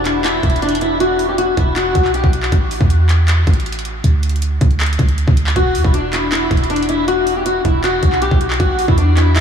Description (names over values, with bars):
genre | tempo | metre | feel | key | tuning
hip hop, trap | 158 BPM | 4/4 | half-time | E minor | A4 = 439 Hz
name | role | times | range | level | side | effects
fingerpicked swing-style acoustic guitar | melody | 0.0-2.3, 5.6-9.4 s | D4 to G4 | -17 LUFS | left 1 dB | analog chorus, low-pass filter, analog delay
warm 808-style bass | bass | 0.0-9.4 s | E1 to E2 | -17 LUFS | equal | none
trap drum kit | drums | 0.1-9.4 s | handclaps, hi-hat, kick drum | -18 LUFS | equal | none
room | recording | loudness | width
moderate huge ambient reverb, RT60 7.9 s | dreamy mix soaked in reverb | -13 LUFS | side -7 dB against mid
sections
0.0-9.4 A section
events
none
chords
0.0 Esus2; 2.5 A5; 4.0 N.C.; 5.6 Esus2; 8.6 A5